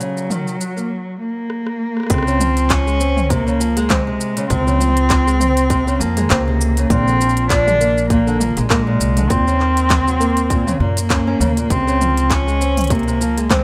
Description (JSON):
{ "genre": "folktronica", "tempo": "100 BPM", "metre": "4/4", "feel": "swing 56% on 16ths", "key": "Db major", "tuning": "A4 = 439 Hz", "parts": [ { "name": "dark cello", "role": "melody", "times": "0.0-13.6 s", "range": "Gb3 to D4", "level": "-21 LUFS", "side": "equal", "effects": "none" }, { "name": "nylon-string guitar", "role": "arpeggios", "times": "0.0-13.6 s", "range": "Bb2 to Db4", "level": "-25 LUFS", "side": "equal", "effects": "none" }, { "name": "organic electronic drum kit", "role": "drums", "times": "0.0-13.6 s", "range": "handclaps, hi-hat, rim click, shaker, toms", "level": "-25 LUFS", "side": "equal", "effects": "overdrive, studio reverb" }, { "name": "upright bass", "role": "bass", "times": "2.1-13.6 s", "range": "Bb1 to Gb2", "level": "-22 LUFS", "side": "equal", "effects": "tube saturation" }, { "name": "electronic kick drum", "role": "drums", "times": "2.1-13.6 s", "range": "none", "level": "-21 LUFS", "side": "equal", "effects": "studio reverb" } ], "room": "light reverb, small room reverb", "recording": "none", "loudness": "-17 LUFS", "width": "mono", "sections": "0.0-2.1 A section; 2.1-13.6 B section", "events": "drum fill 1.5-2.1", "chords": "0.0 Ebm7; 2.1 Dbmaj7; 6.9 Bb7; 9.3 Ebm7; 11.7 Dbmaj7", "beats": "0.30 0.90 1.50 | 2.10 2.70 3.30 3.90 | 4.50 5.10 5.70 6.30 | 6.90 7.50 8.10 8.70 | 9.30 9.90 10.50 11.10 | 11.70 12.30 12.90 13.50" }